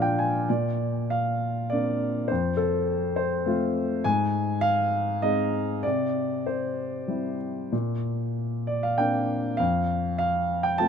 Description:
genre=classical, lyrical solo piano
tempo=92-108 BPM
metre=3/4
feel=rubato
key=Bb major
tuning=A4 = 440 Hz
part: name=dark baby grand piano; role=solo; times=0.0-10.9 s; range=F2 to A5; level=-24 LUFS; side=left 1 dB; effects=none
room=light reverb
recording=none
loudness=-24 LUFS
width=side -7 dB against mid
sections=0.5-10.9 A section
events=grand piano fill 0.0-0.5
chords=0.5 Bbadd9; 2.3 F; 4.0 Ab; 5.8 C; 7.7 Bbadd9; 9.6 F

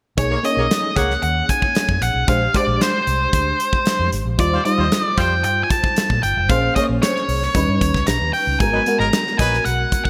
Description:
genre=polished 1980s jazz-funk pop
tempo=114 BPM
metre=4/4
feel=straight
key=unclear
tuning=A4 = 441 Hz
part: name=octave-fuzz lead guitar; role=melody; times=0.2-10.1 s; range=B#4 to A#5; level=-22 LUFS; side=equal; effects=distortion, delay
part: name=FM electric piano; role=accompaniment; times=0.2-10.1 s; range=G3 to C#5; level=-26 LUFS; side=equal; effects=ensemble chorus
part: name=vintage muted fingered electric bass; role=bass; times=0.2-9.8 s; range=E#1 to A#2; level=-25 LUFS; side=equal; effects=none
part: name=modern studio drum kit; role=drums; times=0.2-10.1 s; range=hi-hat, kick drum, snare drum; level=-24 LUFS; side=equal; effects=gated reverb
part: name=warm horn section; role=second line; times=0.3-1.1, 4.5-5.3, 8.7-9.6 s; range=F#3 to C#5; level=-29 LUFS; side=equal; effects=none
room=moderate lush hall reverb, RT60 1.7 s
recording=bright 1980s-style digital production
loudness=-18 LUFS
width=mono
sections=0.2-10.1 A section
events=none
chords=0.2 Bmaj13; 2.3 A#13; 4.4 D#69; 6.5 A#m9; 7.6 D#7b13; 8.6 G#m9

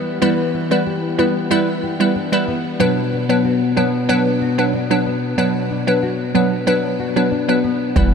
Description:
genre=dancehall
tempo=93 BPM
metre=4/4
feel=straight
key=unclear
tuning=A4 = 440 Hz
part: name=nylon-string guitar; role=arpeggios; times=0.0-8.1 s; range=B2 to G4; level=-21 LUFS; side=left 4 dB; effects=lush chorus, tape echo
part: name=glassy wavetable pluck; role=accompaniment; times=0.2-8.1 s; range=F#3 to B4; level=-17 LUFS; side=right 1 dB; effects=chorus
part: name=clean 808-style bass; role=bass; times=8.0-8.1 s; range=E1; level=-16 LUFS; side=equal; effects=none
part: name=electronic kick drum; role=drums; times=8.0-8.1 s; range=none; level=-17 LUFS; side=equal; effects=overdrive
room=wet huge ambient reverb, RT60 8.2 s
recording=dreamy mix soaked in reverb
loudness=-15 LUFS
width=side -6 dB against mid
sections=0.0-8.1 A section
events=none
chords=0.0 Em; 2.8 Bm

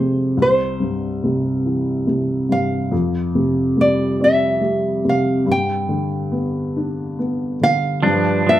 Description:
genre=acoustic folk-pop ballad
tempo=70 BPM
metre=3/4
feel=straight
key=C major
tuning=A4 = 442 Hz
part: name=nylon-string guitar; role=melody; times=0.0-8.6 s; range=C5 to G5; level=-19 LUFS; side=equal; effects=none
part: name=dark upright piano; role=accompaniment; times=0.0-8.6 s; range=C2 to D4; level=-18 LUFS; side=equal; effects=none
part: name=pedal steel guitar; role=second line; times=8.0-8.6 s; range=D4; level=-18 LUFS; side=right 1 dB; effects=none
part: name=pedal harmonium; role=sustained chords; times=8.0-8.6 s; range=G2 to B4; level=-23 LUFS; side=right 2 dB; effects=none
part: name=semi-hollow electric guitar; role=arpeggios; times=8.0-8.6 s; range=F3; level=-21 LUFS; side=right 6 dB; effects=tremolo
room=moderate large studio reverb, RT60 1.1 s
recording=band playing live in one room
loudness=-16 LUFS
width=side -13 dB against mid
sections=0.0-8.0 A section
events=none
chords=0.4 C; 2.9 Fsus2; 5.5 G; 8.0 G7

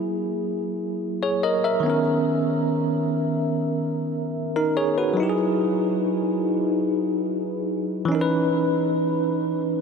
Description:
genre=R&B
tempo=72 BPM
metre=4/4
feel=straight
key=B major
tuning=A4 = 441 Hz
part: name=bell-like tine electric piano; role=solo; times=0.0-9.8 s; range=D#3 to E5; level=-21 LUFS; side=equal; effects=medium stereo tremolo, analog delay
room=wet huge ambient reverb, RT60 5.4 s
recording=dreamy mix soaked in reverb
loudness=-21 LUFS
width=side -5 dB against mid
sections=0.0-9.8 A section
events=none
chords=0.0 F#9; 1.8 Bmaj9; 5.2 Emaj9; 8.1 C#m9/E

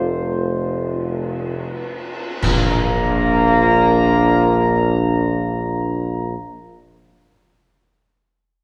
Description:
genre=classical, ceremonial fanfare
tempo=free time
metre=none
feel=none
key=Bb major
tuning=A4 = 439 Hz
part: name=dark trumpet section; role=melody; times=0.0-6.4 s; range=C5 to Bb5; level=-25 LUFS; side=equal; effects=none
part: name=bright trombone section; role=sustained chords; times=0.0-6.4 s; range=C3 to Bb3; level=-26 LUFS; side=equal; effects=none
part: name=mellow French horn section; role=sustained chords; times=0.0-6.3 s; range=A3 to F4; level=-25 LUFS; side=equal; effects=none
part: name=mellow tuba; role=bass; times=0.0-6.4 s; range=F1 to Bb1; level=-23 LUFS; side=equal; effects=none
part: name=clash cymbals and concert bass drum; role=percussion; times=2.4-4.9 s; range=none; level=-28 LUFS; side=equal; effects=none
room=wet scoring stage reverb, RT60 1.6 s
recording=worn, warbling old tape, cassette tape, warbly pitch drift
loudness=-18 LUFS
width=mono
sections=0.0-2.4 A section; 2.4-7.4 B section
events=slowing down 0.0-2.4; band accent 2.4-3.7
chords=0.0 F; 2.4 Bb

